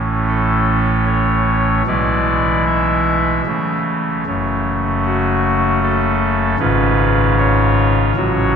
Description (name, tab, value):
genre	classical, chorale-style piece for pipe organ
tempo	76 BPM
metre	3/4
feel	rubato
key	A major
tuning	A4 = 440 Hz
part	pipe organ, soft reed	solo	0.0-8.6 s	F#1 to E5	-14 LUFS	equal	none
room	wet cathedral reverb, RT60 4.6 s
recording	minimal, uncompressed stereo recording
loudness	-14 LUFS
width	side -7 dB against mid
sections	0.0-8.6 A section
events	none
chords	0.0 A; 1.9 E7/B; 3.5 A/C#; 4.3 F#m; 6.6 C#7/G#